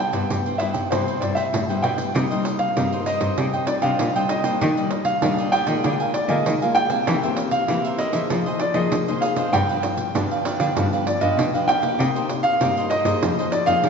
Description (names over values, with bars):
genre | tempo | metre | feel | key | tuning
samba and choro | 98 BPM | 4/4 | straight | C minor | A4 = 440 Hz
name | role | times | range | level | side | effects
warm grand piano | melody | 0.0-13.9 s | C5 to G5 | -23 LUFS | equal | none
cavaquinho | accompaniment | 0.0-13.9 s | D4 to Ab5 | -28 LUFS | right 3 dB | none
nylon-string guitar | accompaniment | 0.0-13.9 s | G2 to Ab4 | -26 LUFS | left 4 dB | none
rich cello | bass | 0.1-13.9 s | F2 to F3 | -27 LUFS | left 1 dB | none
pandeiro | percussion | 0.1-13.9 s | none | -26 LUFS | right 3 dB | none
room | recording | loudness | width
wet concert hall reverb, RT60 2.2 s | recorded in a church or concert hall, nothing above 7.8 kHz | -19 LUFS | side -6 dB against mid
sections
0.0-2.2 A section; 2.2-13.9 B section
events
none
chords
0.0 Cmaj7; 2.2 Cm7; 3.4 Abmaj9#11/C; 4.6 Ebmaj7; 5.8 Bb7/D; 7.1 C7/E; 8.3 Fm7; 9.5 G7; 12.0 Cm7; 13.2 Fm11